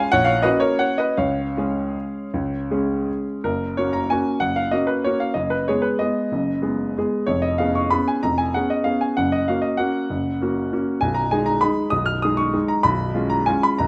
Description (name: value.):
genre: classical, piano waltz.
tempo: 152-210 BPM.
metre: 3/4.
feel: rubato.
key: F# major.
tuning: A4 = 439 Hz.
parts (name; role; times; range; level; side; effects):
clear baby grand piano; solo; 0.0-13.9 s; B0 to E#6; -21 LUFS; equal; none.
room: moderate recital hall reverb, RT60 1.4 s.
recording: close, detailed microphones.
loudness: -22 LUFS.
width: mono.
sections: 0.0-3.4 A section; 3.4-13.9 B section.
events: none.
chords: 0.1 F#/A#; 1.2 C#; 3.4 F#; 5.4 G#m7/F#; 7.3 C#7/E#; 9.2 F#; 11.0 G#m/B; 12.9 C#7/B.